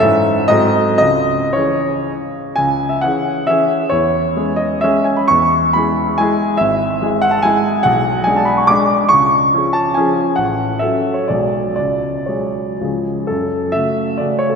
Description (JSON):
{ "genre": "classical, romantic triple-time dance for piano with dotted rhythms", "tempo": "104-151 BPM", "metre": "3/4", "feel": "rubato", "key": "C# minor, F# minor from 7.9 s", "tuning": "A4 = 439 Hz", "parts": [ { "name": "warm grand piano", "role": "solo", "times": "0.0-14.6 s", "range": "G#1 to D6", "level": "-13 LUFS", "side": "equal", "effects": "none" } ], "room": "wet church reverb, RT60 3.0 s", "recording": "none", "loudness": "-13 LUFS", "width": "side -6 dB against mid", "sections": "0.0-2.6 A section; 2.6-13.3 B section; 13.3-14.6 A section", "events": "none", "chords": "0.0 C#m/G#; 0.5 G#7b9; 1.0 C#m; 3.9 C#m/E; 5.3 E; 6.6 E/G#; 7.9 G#m7b5/B; 9.1 C#; 10.4 F#m/A; 11.3 G#m7b5/B; 11.8 C#sus4; 12.8 C#; 13.3 F#m" }